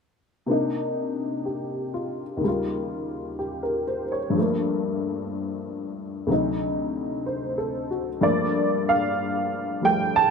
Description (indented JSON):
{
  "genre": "solo jazz",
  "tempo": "62 BPM",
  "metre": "4/4",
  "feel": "swing 68% on 8ths",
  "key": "G minor",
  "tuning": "A4 = 440 Hz",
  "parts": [
    { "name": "honky-tonk upright piano", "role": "solo", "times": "0.5-10.3 s", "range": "D2 to A5", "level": "-23 LUFS", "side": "equal", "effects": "none" }
  ],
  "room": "moderate studio reverb, RT60 0.7 s",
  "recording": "none",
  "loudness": "-24 LUFS",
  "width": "side -5 dB against mid",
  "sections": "0.5-8.2 A section; 8.2-10.3 B section",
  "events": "none",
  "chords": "0.5 Cm9; 2.4 Eb9; 4.3 Gm9; 6.3 D7b9; 8.2 Gm9",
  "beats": "| 0.46 1.44 2.41 3.38 | 4.34 5.32 6.28 7.25 | 8.22 9.19 10.15"
}